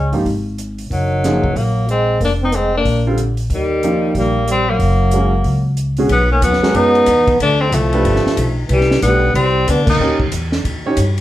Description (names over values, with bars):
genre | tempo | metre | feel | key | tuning
jazz, small-group swing and bop | 185 BPM | 4/4 | swing 62% on 8ths | unclear | A4 = 436 Hz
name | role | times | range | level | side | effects
clear tenor saxophone | melody | 0.0-10.2 s | Gb3 to Eb4 | -18 LUFS | left 2 dB | plate reverb
warm trombone | second line | 0.0-10.2 s | Eb3 to C4 | -19 LUFS | right 1 dB | none
upright bass | bass | 0.0-11.2 s | F1 to Ab2 | -18 LUFS | equal | none
clear baby grand piano | accompaniment | 0.1-11.0 s | Cb3 to C#5 | -19 LUFS | right 2 dB | none
compact cocktail drum kit | drums | 0.1-11.2 s | crash cymbal, hi-hat, kick drum, ride cymbal, snare drum | -23 LUFS | equal | none
room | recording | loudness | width
wet studio reverb, RT60 0.5 s | heard from further back in the room | -13 LUFS | side -14 dB against mid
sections
0.0-6.1 A section; 6.1-11.2 B section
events
band accent 9.8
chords
0.0 Db (rootless); 0.9 Gb69; 2.2 Fmadd11; 2.9 Bb69; 3.5 Ebadd9; 4.8 Gb; 6.1 Bmaj7; 7.4 Dm7; 8.1 G7; 8.7 Cmaj7; 10.0 D#7